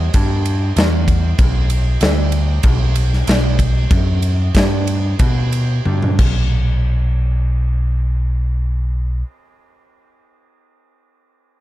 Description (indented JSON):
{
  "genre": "stoner and doom metal",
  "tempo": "90-96 BPM",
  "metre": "4/4",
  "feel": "straight",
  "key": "B minor",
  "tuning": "A4 = 437 Hz",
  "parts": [
    { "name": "picked electric bass", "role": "bass", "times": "0.0-9.2 s", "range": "B1 to B2", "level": "-16 LUFS", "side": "equal", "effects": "overdrive" },
    { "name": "big rock drum kit", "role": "drums", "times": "0.1-6.3 s", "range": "crash cymbal, kick drum, ride cymbal, snare drum, toms", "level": "-17 LUFS", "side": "equal", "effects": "none" }
  ],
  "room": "little or no reverb",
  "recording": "dark, warm production",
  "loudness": "-14 LUFS",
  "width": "side -15 dB against mid",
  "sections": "0.0-6.5 A section; 6.5-9.2 B section",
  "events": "slowing down 1.4-6.5; drum fill 5.9-6.5",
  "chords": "none"
}